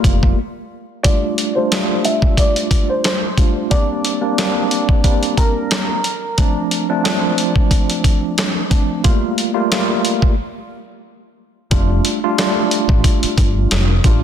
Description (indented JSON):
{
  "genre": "hip hop, boom-bap hip-hop",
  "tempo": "90 BPM",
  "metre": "4/4",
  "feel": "swing 55% on 16ths",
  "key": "F major",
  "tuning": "A4 = 438 Hz",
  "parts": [
    { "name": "tine electric piano", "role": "accompaniment", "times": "0.0-14.2 s", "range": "F3 to F4", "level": "-19 LUFS", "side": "right 1 dB", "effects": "overdrive, fast stereo tremolo, high-pass filter, low-pass filter" },
    { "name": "deep dub fingered electric bass", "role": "bass", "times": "0.0-0.3, 11.7-14.2 s", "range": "F1 to A1", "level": "-17 LUFS", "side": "equal", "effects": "none" },
    { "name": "dusty soul sampler-style drum kit", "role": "drums", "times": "0.0-14.2 s", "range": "handclaps, hi-hat, kick drum, snare drum", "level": "-16 LUFS", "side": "equal", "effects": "none" },
    { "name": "warm upright piano", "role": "melody", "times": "1.0-6.3 s", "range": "Bb4 to E5", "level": "-22 LUFS", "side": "equal", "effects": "high-pass filter, low-pass filter, tape echo" }
  ],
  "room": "light reverb, digital ambience",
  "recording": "dense, heavily limited modern master",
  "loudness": "-14 LUFS",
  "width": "side -9 dB against mid",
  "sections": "0.0-1.0 A section; 1.0-11.7 B section; 11.7-14.2 C section",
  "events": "break 0.4-1.0, 10.4-11.7; filter sweep 1.0-11.7",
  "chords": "0.0 Gm9; 1.0 F69; 3.7 Bb69; 6.4 Dm7; 9.0 Gm9; 11.7 F69",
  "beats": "0.38 | 1.04 1.71 2.38 3.04 | 3.71 4.38 5.04 5.71 | 6.38 7.04 7.71 8.38 | 9.04 9.71 10.38 11.04 | 11.71 12.38 13.04 13.71"
}